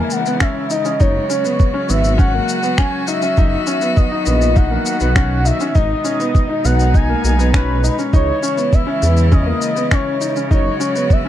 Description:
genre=piano and strings electronica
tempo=101 BPM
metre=4/4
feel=straight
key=unclear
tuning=A4 = 440 Hz
part: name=warm velvety synth lead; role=melody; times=0.0-11.3 s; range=B4 to G#5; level=-20 LUFS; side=equal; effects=chorus
part: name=rich string quartet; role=sustained chords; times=0.0-11.3 s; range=B2 to F#4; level=-24 LUFS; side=equal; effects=sidechain pumping
part: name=warm concert grand piano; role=riff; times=0.0-11.3 s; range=A#3 to D#4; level=-21 LUFS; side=left 2 dB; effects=none
part: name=dark detuned saw bass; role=bass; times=0.0-10.7 s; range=F#1 to E2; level=-16 LUFS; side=equal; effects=sidechain pumping
part: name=electronic shaker and finger snaps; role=drums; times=0.1-11.2 s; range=none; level=-24 LUFS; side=left 2 dB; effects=none
part: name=electronic kick drum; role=drums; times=0.4-11.2 s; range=none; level=-13 LUFS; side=equal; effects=none
room=little or no reverb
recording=dark, warm production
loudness=-13 LUFS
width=side -12 dB against mid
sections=0.0-11.3 A section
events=none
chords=0.0 C#m; 1.0 F#sus2; 3.4 B/F#; 5.8 G#m; 8.1 C#m; 10.5 F#sus2

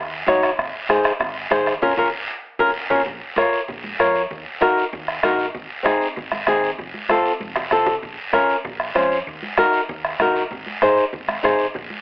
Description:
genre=latin, cumbia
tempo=193 BPM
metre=4/4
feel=straight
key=Bb minor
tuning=A4 = 440 Hz
part: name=hollow-body short-scale fingered electric bass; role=bass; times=0.0-11.9 s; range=F1 to F2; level=-38 LUFS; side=equal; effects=none
part: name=flamenco guitar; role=accompaniment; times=0.3-11.7 s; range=C4 to Db5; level=-17 LUFS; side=left 1 dB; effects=none
part: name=bombo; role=percussion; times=0.3-11.9 s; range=none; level=-24 LUFS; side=right 1 dB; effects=none
part: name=congas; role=percussion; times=0.3-12.0 s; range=none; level=-32 LUFS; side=right 1 dB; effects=none
part: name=guiro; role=percussion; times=0.3-12.0 s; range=none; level=-29 LUFS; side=right 1 dB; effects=none
room=moderate studio reverb, RT60 0.8 s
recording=telephone sound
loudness=-18 LUFS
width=side -22 dB against mid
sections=0.0-3.1 A section; 3.1-12.0 B section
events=band accent 1.8-3.1; drum fill 2.4-3.1, 7.1-8.0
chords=0.0 Ebm; 0.6 Ab; 1.8 Bbm; 4.3 Ebm; 5.5 Ab; 6.8 F; 8.0 Bbm; 9.3 Ebm; 10.5 Ab

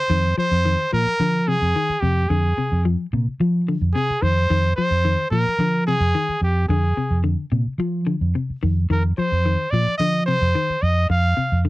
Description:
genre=afrobeat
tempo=109 BPM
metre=4/4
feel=straight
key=F dorian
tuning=A4 = 440 Hz
part: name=bright trumpet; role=melody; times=0.0-11.6 s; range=G4 to F5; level=-22 LUFS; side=right 1 dB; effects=none
part: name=semi-hollow electric guitar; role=arpeggios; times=0.0-11.7 s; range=C3 to F3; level=-25 LUFS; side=left 4 dB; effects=none
part: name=fingered electric bass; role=bass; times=0.1-11.7 s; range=F2 to F3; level=-20 LUFS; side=right 1 dB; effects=none
room=little or no reverb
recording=dry, close 1970s-style studio recording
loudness=-18 LUFS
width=side -18 dB against mid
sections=0.1-11.7 A section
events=none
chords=0.1 Fm7

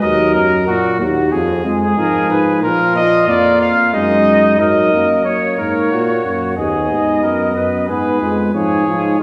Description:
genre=classical, imitative canzona for brass ensemble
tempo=92 BPM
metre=4/4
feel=straight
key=unclear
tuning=A4 = 440 Hz
part: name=mellow trumpet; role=melody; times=0.0-9.2 s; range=F#4 to E#5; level=-19 LUFS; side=equal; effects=none
part: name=mellow trumpet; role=second line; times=0.0-9.2 s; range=D#4 to C#5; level=-23 LUFS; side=equal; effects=none
part: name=warm trombone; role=accompaniment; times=0.0-9.2 s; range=E#3 to B3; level=-21 LUFS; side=equal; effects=none
part: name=mellow bass trombone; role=bass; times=0.0-9.2 s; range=D#2 to A#2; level=-21 LUFS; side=equal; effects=none
room=wet recital hall reverb, RT60 1.6 s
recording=recorded in a church or concert hall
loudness=-15 LUFS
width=mono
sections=0.0-5.3 A section; 5.3-9.2 B section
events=none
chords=0.0 D#m; 1.3 Fdim; 2.6 A#; 3.9 D#m/F#; 6.6 B/D#; 7.9 Fdim

